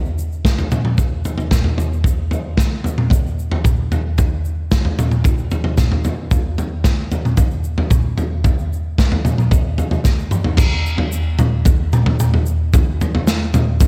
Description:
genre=rock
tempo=112 BPM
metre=4/4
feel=straight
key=none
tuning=none
part: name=egg shaker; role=percussion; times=0.1-13.9 s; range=none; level=-39 LUFS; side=equal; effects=none
part: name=crunchy breakbeat drum kit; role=drums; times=0.4-13.9 s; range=crash cymbal, kick drum, snare drum, toms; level=-17 LUFS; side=equal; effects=none
room=light reverb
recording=none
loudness=-17 LUFS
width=mono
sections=0.0-10.6 A section; 10.6-13.9 B section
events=drum fill 10.1-10.6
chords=none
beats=0.45 0.98 1.51 | 2.05 2.58 3.11 3.65 | 4.18 4.71 5.25 5.78 | 6.32 6.85 7.39 7.92 | 8.46 8.99 9.53 10.06 | 10.60 11.13 11.67 12.20 | 12.74 13.27 13.81

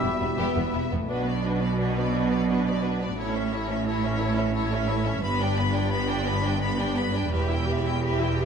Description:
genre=cinematic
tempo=115 BPM (dotted quarters)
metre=12/8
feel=straight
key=B minor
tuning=A4 = 441 Hz
part: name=rich symphonic violin section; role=melody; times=0.0-8.5 s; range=B4 to B5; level=-32 LUFS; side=left 2 dB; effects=none
part: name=clear oboe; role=second line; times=0.0-0.9 s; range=E5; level=-34 LUFS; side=left 2 dB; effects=none
part: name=mellow clarinet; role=second line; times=0.0-0.9 s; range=B3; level=-38 LUFS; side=left 2 dB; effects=none
part: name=mellow concert flute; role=second line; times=0.0-0.9 s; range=B5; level=-38 LUFS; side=left 8 dB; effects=none
part: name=rich studio violin section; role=second line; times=0.0-8.5 s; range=B3 to D5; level=-35 LUFS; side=left 2 dB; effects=none
part: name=rich symphonic viola section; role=accompaniment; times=0.0-8.5 s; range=B3 to G4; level=-31 LUFS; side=left 2 dB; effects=none
part: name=mellow French horn section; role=sustained chords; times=0.0-1.1 s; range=A3 to E4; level=-34 LUFS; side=left 6 dB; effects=none
part: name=warm trombone section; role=sustained chords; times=0.0-0.9 s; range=B2 to G3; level=-35 LUFS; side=right 4 dB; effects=none
part: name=clear trumpet section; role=stabs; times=0.0-0.6 s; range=G4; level=-36 LUFS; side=right 1 dB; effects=none
part: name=clear symphonic cello section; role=bass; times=0.0-8.5 s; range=E2 to B2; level=-28 LUFS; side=right 2 dB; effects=none
part: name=clear symphonic double bass section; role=bass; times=0.0-8.5 s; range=E1 to B1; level=-29 LUFS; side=right 4 dB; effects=none
room=moderate scoring stage reverb, RT60 1.7 s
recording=none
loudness=-23 LUFS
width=side -6 dB against mid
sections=0.0-1.1 A section; 1.1-8.5 B section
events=none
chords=0.0 Em; 1.1 Bm; 3.2 A; 5.2 G; 7.3 Em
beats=0.03 0.56 | 1.10 1.62 2.14 2.66 | 3.18 3.70 4.21 4.72 | 5.24 5.75 6.27 6.79 | 7.33 7.86 8.40

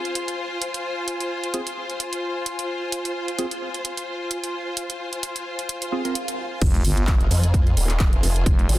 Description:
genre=bass house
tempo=130 BPM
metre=4/4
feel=swing 55% on 16ths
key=F minor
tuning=A4 = 440 Hz
part: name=clear symphonic string section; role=texture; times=0.0-8.8 s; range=F4 to Ab5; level=-28 LUFS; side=left 1 dB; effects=sidechain pumping
part: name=house drum kit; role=drums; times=0.1-8.8 s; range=crash cymbal, handclaps, hi-hat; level=-28 LUFS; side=right 2 dB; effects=overdrive
part: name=percussive organ stab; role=stabs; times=1.5-6.1 s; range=C4 to Bb4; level=-30 LUFS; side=right 3 dB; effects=chorus, sidechain pumping, tape echo
part: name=swell and sub drop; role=sound effects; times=5.8-8.5 s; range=none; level=-30 LUFS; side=equal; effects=none
part: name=growling FM bass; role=bass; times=6.6-8.7 s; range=F1 to G1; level=-22 LUFS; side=equal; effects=tube saturation, sidechain pumping
part: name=electronic kick drum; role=drums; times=6.6-8.6 s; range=none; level=-20 LUFS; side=equal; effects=overdrive
part: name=formant-sweep wobble bass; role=bass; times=7.2-8.8 s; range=Eb1 to F2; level=-20 LUFS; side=equal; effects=chorus, tube saturation, sidechain pumping
room=light reverb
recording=dense, heavily limited modern master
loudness=-22 LUFS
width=side -16 dB against mid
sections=0.0-6.6 A section; 6.6-8.8 B section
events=swell 5.8-6.6; drop 6.6-8.8; impact 6.6-8.5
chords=0.0 Fm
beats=0.15 0.62 | 1.08 1.54 2.00 2.46 | 2.92 3.39 3.85 4.31 | 4.77 5.23 5.69 6.16 | 6.62 7.08 7.54 8.00 | 8.46

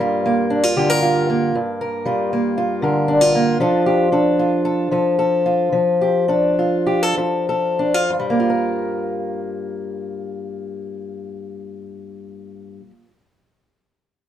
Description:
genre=folk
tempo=93-117 BPM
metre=4/4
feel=straight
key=G minor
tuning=A4 = 442 Hz
part: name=fingerpicked acoustic archtop guitar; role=solo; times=0.0-13.2 s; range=G2 to Bb4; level=-17 LUFS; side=equal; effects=none
room=moderate studio reverb, RT60 0.5 s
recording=band playing live in one room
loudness=-16 LUFS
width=side -10 dB against mid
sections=0.0-8.1 A section; 8.1-13.3 B section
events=slowing down 3.6-8.1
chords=0.0 Gm7; 3.6 Dm/F; 8.1 Gm7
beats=0.51 1.02 | 1.54 2.05 2.57 3.08 | 3.60 4.12 4.64 5.18 | 5.72 6.28 6.86 7.47 | 8.10 8.74 9.39 10.03 | 10.68 11.32 11.97 12.62

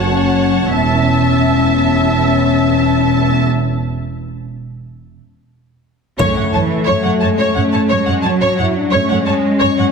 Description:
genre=cinematic, epic orchestral film score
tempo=88 BPM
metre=4/4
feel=straight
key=F# minor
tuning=A4 = 437 Hz
part: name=rich studio violin section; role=melody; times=0.0-9.9 s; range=C#5 to A5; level=-24 LUFS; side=left 5 dB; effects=none
part: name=clear symphonic violin section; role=second line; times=0.0-9.9 s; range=C#5 to A5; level=-22 LUFS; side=equal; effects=none
part: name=rich symphonic viola section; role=accompaniment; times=0.0-9.8 s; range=C#5 to E5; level=-21 LUFS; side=right 2 dB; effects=none
part: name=mellow French horn section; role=sustained chords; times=0.0-9.9 s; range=A3 to F#4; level=-17 LUFS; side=left 7 dB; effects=none
part: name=rich symphonic cello section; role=bass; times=0.0-9.9 s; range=E2 to A3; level=-20 LUFS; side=right 4 dB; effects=none
part: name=rich symphonic double bass section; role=bass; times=0.0-9.8 s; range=E1 to F#2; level=-19 LUFS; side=right 5 dB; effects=none
part: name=taiko ensemble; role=drums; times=6.2-7.5 s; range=none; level=-23 LUFS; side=right 1 dB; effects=none
part: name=triangle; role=percussion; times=6.2-7.5 s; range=none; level=-40 LUFS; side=left 4 dB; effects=none
room=moderate concert hall reverb, RT60 2.1 s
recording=heavily compressed radio sound, multiband compression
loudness=-12 LUFS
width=side -5 dB against mid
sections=0.0-6.2 A section; 6.2-9.9 A section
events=break 3.5-6.2; band accent 6.2-6.9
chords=0.0 F#m; 0.7 A/E; 3.5 N.C.; 6.2 F#m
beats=0.06 | 0.74 1.42 2.11 2.79 | 3.47 4.15 4.83 5.52 | 6.20 6.88 7.56 8.24 | 8.93 9.61

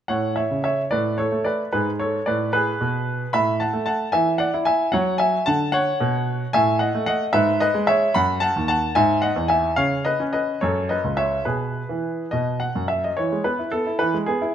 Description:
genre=classical-period piano sonatina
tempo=74 BPM (dotted quarters)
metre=6/8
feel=rubato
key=A major, E major from 6.5 s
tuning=A4 = 440 Hz
part: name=bright baby grand piano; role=solo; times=0.1-14.5 s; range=C#2 to B5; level=-19 LUFS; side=equal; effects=none
room=moderate recital hall reverb, RT60 1.4 s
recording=close, detailed microphones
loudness=-19 LUFS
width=side -9 dB against mid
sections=0.1-13.2 A section; 13.2-14.5 B section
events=none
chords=0.1 A; 0.9 Bm9/A; 1.7 Bm13/G#; 3.4 A5; 4.1 E9; 4.9 F#5; 6.5 A5; 7.3 C#m9/G#; 8.2 D#dim; 9.0 E/G#; 9.8 C#9; 10.6 F#m; 11.5 E/B; 12.3 B5; 13.2 E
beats=| 0.09 0.93 | 1.74 2.55 | 3.35 4.15 | 4.95 5.74 | 6.54 7.34 | 8.15 8.96 | 9.78 10.62 | 11.47 12.33 | 13.18 14.01

